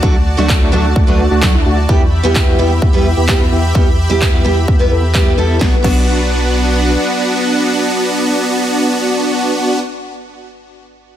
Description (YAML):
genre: EDM, festival progressive house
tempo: 129 BPM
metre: 4/4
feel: straight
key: B minor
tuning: A4 = 440 Hz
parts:
  - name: picked steel-string acoustic guitar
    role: accompaniment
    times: 0.0-9.8 s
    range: F#3 to B4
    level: -20 LUFS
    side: right 1 dB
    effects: sidechain pumping, ping-pong delay
  - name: supersaw pad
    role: sustained chords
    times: 0.0-9.6 s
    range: D4 to B5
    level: -23 LUFS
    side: equal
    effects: sidechain pumping
  - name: supersaw chords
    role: riff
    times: 0.0-9.8 s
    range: A3 to A4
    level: -16 LUFS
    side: equal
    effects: sidechain pumping, low-pass filter, ping-pong delay
  - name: saturated sub bass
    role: bass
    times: 0.0-7.0 s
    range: B1 to E2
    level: -16 LUFS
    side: equal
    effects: sidechain pumping
  - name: electronic kick drum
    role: drums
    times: 0.0-6.0 s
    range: none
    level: -13 LUFS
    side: equal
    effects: none
  - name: big-room dance drum kit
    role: drums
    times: 0.5-6.0 s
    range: crash cymbal, handclaps, snare drum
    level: -22 LUFS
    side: equal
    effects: overdrive
room: light reverb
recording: faint mains hum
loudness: -11 LUFS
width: side -11 dB against mid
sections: 0.0-5.6 A section; 5.6-9.3 B section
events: filter sweep on supersaw synth 0.0-5.6; filter sweep on sub bass 0.0-5.6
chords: 0.0 D; 1.9 Em; 5.6 Bm